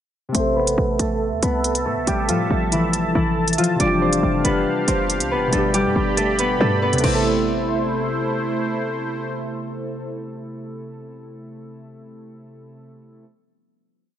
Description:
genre	hip hop, drill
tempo	139 BPM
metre	4/4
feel	half-time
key	A minor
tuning	A4 = 441 Hz
part	concert harp	melody	0.3-10.0 s	E3 to D5	-22 LUFS	left 1 dB	low-pass filter, digital delay
part	warbly lo-fi synth keys	accompaniment	0.3-13.2 s	B2 to E5	-26 LUFS	left 1 dB	chorus, low-pass filter
part	sweeping resonant pad	sustained chords	0.3-10.1 s	A3 to B5	-26 LUFS	right 2 dB	chorus, low-pass filter
part	short 808-style bass	bass	0.3-8.9 s	F1 to A2	-24 LUFS	equal	none
part	drill drum kit	drums	0.3-7.1 s	crash cymbal, hi-hat	-25 LUFS	right 1 dB	none
room	light reverb, digital ambience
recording	nothing above 10.9 kHz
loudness	-18 LUFS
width	side -10 dB against mid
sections	0.3-7.3 breakdown; 7.3-10.7 final hit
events	filter sweep 0.3-7.3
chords	0.3 Am; 3.8 Fsus2; 5.5 G; 7.0 Am

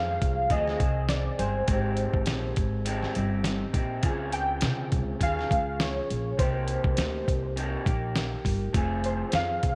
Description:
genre	indie pop, bedroom pop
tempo	102 BPM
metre	4/4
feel	swing 55% on 16ths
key	unclear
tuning	A4 = 439 Hz
part	warbly lo-fi synth keys	melody	0.0-9.8 s	C5 to G5	-33 LUFS	equal	ensemble chorus, slapback echo
part	electric guitar through a small old amp	accompaniment	0.0-9.8 s	C3 to Ab4	-35 LUFS	equal	lush chorus, warbly pitch drift
part	upright bass	bass	0.0-9.8 s	F1 to Db3	-32 LUFS	equal	none
part	dusty soul sampler-style drum kit	drums	0.2-9.8 s	hi-hat, kick drum, snare drum	-31 LUFS	equal	none
room	light reverb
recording	none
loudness	-27 LUFS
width	mono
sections	0.0-9.8 A section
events	none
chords	0.0 Fm; 1.7 Abmaj7; 4.0 Dbmaj7; 6.4 Cm7; 8.7 Fm

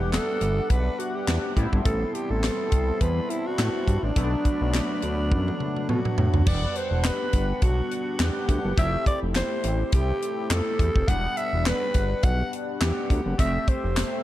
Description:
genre	early-eighties boogie funk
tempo	104 BPM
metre	4/4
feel	swing 56% on 16ths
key	E minor from 6.5 s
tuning	A4 = 441 Hz
part	growling alto saxophone	melody	0.0-14.2 s	D4 to F#5	-29 LUFS	right 1 dB	none
part	chorused polysynth	accompaniment	0.0-14.2 s	F#3 to F#5	-31 LUFS	left 2 dB	phaser
part	warm analog pad	sustained chords	0.0-6.4 s	G3 to D6	-38 LUFS	right 2 dB	lush chorus
part	fat analog bass	bass	0.0-14.0 s	E1 to B2	-25 LUFS	equal	none
part	tight funk drum kit	drums	0.1-14.1 s	crash cymbal, handclaps, hi-hat, kick drum, snare drum, toms	-25 LUFS	equal	gated reverb
room	small room ambience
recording	none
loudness	-22 LUFS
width	side -14 dB against mid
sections	0.0-6.5 A section; 6.5-14.2 B section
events	drum fill 5.3-6.5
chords	0.0 Em9; 1.6 Am7; 4.2 Bm7; 6.5 Em9; 8.8 Fmaj9; 11.1 Em9; 13.4 Fmaj9

